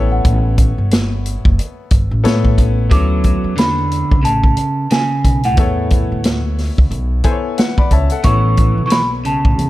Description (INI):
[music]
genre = hip hop, jazz-hop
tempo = 90 BPM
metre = 4/4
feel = swing 60% on 16ths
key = A major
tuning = A4 = 440 Hz
[part]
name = celesta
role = melody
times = 0.0-9.7 s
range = F#5 to D6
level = -20 LUFS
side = right 1 dB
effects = none
[part]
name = bright upright piano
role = accompaniment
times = 0.0-9.7 s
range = B3 to B5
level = -23 LUFS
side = left 6 dB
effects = none
[part]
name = upright bass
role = bass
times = 0.0-9.7 s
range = F#1 to A2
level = -17 LUFS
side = equal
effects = none
[part]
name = vintage drum kit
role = drums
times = 0.2-9.7 s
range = hi-hat, kick drum, snare drum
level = -15 LUFS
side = equal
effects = none
[part]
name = electric guitar at the edge of break-up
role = second line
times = 2.9-9.7 s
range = A2 to F#3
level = -20 LUFS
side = right 3 dB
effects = none
[sound]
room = studio ambience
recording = dark, warm production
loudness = -12 LUFS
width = side -16 dB against mid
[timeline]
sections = 0.0-9.7 A section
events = upright piano fill 6.9-8.2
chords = 0.0 A9; 2.2 Aadd9; 2.9 Dmaj9; 5.6 E9sus4; 8.2 Aadd9